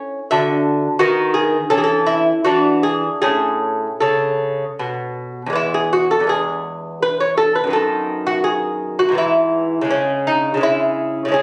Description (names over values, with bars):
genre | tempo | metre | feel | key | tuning
classical, baroque-style dance for lute | 75-88 BPM | 3/4 | rubato | A major, E major from 5.6 s | A4 = 440 Hz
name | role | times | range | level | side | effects
lute | solo | 0.0-11.4 s | E2 to E5 | -18 LUFS | equal | none
room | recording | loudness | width
light reverb | recorded on a phone in the room, studio reverb | -18 LUFS | mono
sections
0.0-5.6 A section; 5.6-11.4 A section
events
none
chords
0.3 D; 1.0 B/D#; 1.7 E5; 2.5 E7; 3.2 A; 5.6 E; 7.7 B/F#; 9.2 E/G#; 9.9 C#m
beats
0.32 | 1.00 1.71 2.46 | 3.23 4.02 4.79 | 5.57 6.31 7.04 | 7.75 8.47 9.19 | 9.92 10.64 11.36